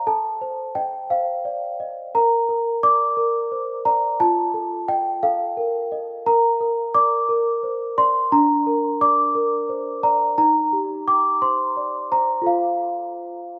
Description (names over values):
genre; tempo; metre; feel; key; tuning
classical, lullaby for celesta; 58 BPM (dotted quarters); 6/8; straight; Bb major; A4 = 438 Hz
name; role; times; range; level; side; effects
celesta; solo; 0.0-13.6 s; D4 to D6; -21 LUFS; equal; none
room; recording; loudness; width
wet lush hall reverb, RT60 2.9 s; rough home demo mix; -21 LUFS; mono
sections
0.0-13.6 A section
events
none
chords
0.1 F7/A; 2.1 Bb; 4.2 F7; 6.3 Bb; 8.3 Bb/D; 10.4 Cm7/Eb; 12.5 F